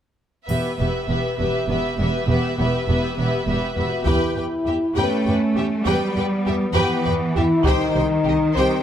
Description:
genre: cinematic, epic orchestral film score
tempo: 67 BPM (dotted quarters)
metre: 6/8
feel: straight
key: unclear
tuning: A4 = 440 Hz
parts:
  - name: warm symphonic violin section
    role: second line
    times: 0.5-8.8 s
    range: G4 to E5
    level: -26 LUFS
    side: left 1 dB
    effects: none
  - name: warm symphonic viola section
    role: accompaniment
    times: 0.5-8.8 s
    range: B3 to G4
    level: -26 LUFS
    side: left 1 dB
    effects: none
  - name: rich symphonic cello section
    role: bass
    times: 0.5-8.8 s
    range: E2 to A3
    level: -24 LUFS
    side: right 2 dB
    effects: none
  - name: rich symphonic double bass section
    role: bass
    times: 0.5-8.6 s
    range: E1 to E2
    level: -25 LUFS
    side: right 2 dB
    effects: none
  - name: triangle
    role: percussion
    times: 0.5-1.6 s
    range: none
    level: -47 LUFS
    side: right 1 dB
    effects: none
  - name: warm French horn section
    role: sustained chords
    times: 3.8-8.8 s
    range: B3 to F#4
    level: -23 LUFS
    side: left 3 dB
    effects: none
  - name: bright symphonic violin section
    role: melody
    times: 4.1-8.8 s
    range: Eb5 to G5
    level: -31 LUFS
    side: left 3 dB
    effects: none
  - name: taiko ensemble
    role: drums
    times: 4.1-8.8 s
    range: none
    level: -24 LUFS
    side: equal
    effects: none
room: light reverb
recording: none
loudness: -18 LUFS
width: side -9 dB against mid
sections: 0.5-4.1 A section; 4.1-8.8 B section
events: band accent 4.1-4.7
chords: 0.5 Em; 7.7 Cm

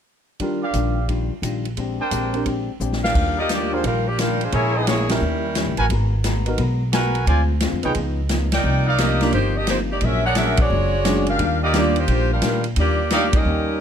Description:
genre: jazz, big band swing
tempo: 175 BPM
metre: 4/4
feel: swing 65% on 8ths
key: Eb major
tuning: A4 = 439 Hz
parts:
  - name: vintage hollow-body jazz guitar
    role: accompaniment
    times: 0.4-13.7 s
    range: Bb2 to Bb4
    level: -27 LUFS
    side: left 6 dB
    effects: none
  - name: warm baby grand piano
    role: accompaniment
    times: 0.4-11.9 s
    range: G3 to Bb4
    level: -26 LUFS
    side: right 2 dB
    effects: none
  - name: swinging big-band drum kit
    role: drums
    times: 0.4-13.4 s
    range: crash cymbal, hi-hat, kick drum, ride cymbal, snare drum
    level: -25 LUFS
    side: equal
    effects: none
  - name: warm trumpet section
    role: stabs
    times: 0.6-13.3 s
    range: D4 to Ab5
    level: -25 LUFS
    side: right 2 dB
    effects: none
  - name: upright bass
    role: bass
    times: 0.7-13.8 s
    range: F#1 to Bb2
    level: -22 LUFS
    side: equal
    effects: none
  - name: bright saxophone section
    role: melody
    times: 3.0-5.8, 8.5-13.8 s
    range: G3 to G5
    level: -22 LUFS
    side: equal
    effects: none
  - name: bright trombone section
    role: second line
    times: 13.3-13.8 s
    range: G3 to Eb4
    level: -25 LUFS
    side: right 2 dB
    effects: none
room: light reverb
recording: none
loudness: -18 LUFS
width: side -8 dB against mid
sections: 0.4-3.2 A section; 3.2-13.8 B section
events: drum fill 2.8-3.2; band accent 5.0, 8.5, 10.5, 13.3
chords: 0.4 Ebmaj9; 1.8 Abmaj9#11; 3.2 Ebmaj9; 4.5 Bbm7b5; 5.2 Eb7b9; 5.9 Abm9; 7.3 Dm7b5; 8.0 Db9; 8.6 Cm11; 10.0 Bb7alt; 11.4 Ebmaj9

